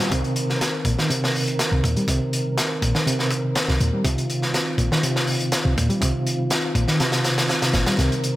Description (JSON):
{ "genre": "breakbeat, breaks", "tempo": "122 BPM", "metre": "4/4", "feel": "straight", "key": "C minor pentatonic", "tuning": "A4 = 440 Hz", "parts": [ { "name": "percussive tonewheel organ", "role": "sustained chords", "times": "0.0-8.4 s", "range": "Eb3 to Bb4", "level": "-27 LUFS", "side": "equal", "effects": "chorus vibrato, slow rotary speaker, sidechain pumping" }, { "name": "bright reed electric piano", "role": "riff", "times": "0.0-8.4 s", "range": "Bb2 to G3", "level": "-23 LUFS", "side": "equal", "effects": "overdrive, fast tremolo, vintage 12-bit sampler grit, low-pass filter, digital delay" }, { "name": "crunchy breakbeat drum kit", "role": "drums", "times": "0.0-8.4 s", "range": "hi-hat, kick drum, snare drum", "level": "-23 LUFS", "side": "equal", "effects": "high-pass filter on kick, high-pass filter on hats, high-pass filter on snare, high-pass filter on room" }, { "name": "noise sweep and riser", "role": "sound effects", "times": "0.0-0.1, 8.0-8.4 s", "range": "none", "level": "-37 LUFS", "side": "left 3 dB", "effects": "none" }, { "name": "warm 808-style bass", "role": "bass", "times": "0.1-8.1 s", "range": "G1 to Eb2", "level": "-23 LUFS", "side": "equal", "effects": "none" } ], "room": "light reverb, studio ambience", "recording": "none", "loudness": "-19 LUFS", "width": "side -16 dB against mid", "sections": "0.1-8.4 A section", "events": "build-up 0.1-8.4; filter sweep on reed electric piano 0.1-8.4; drum fill 8.0-8.4", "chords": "0.1 Cm7", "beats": "| 0.12 0.61 1.10 1.59 | 2.09 2.58 3.07 3.56 | 4.05 4.54 5.04 5.53 | 6.02 6.51 7.00 7.50 | 7.99" }